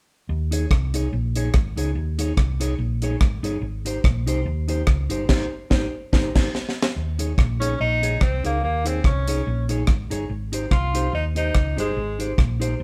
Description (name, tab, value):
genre	ska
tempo	144 BPM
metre	4/4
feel	swing 55% on 8ths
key	Eb mixolydian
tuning	A4 = 440 Hz
part	hollow-body short-scale fingered electric bass	bass	0.3-12.8 s	G1 to Eb2	-27 LUFS	equal	none
part	mellow electric guitar	accompaniment	0.5-12.7 s	Eb4 to Db5	-31 LUFS	equal	slapback echo
part	deep reggae drum kit	drums	0.5-12.7 s	crash cymbal, hi-hat, kick drum, rim click, snare drum	-23 LUFS	equal	none
part	warm tenor saxophone	melody	7.6-12.4 s	Ab3 to F4	-28 LUFS	equal	none
room	moderate studio reverb, RT60 0.8 s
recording	band playing live in one room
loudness	-23 LUFS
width	mono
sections	0.3-7.0 A section; 7.0-12.8 B section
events	band accent 5.3-7.0; drum fill 6.5-7.0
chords	0.3 Eb7sus4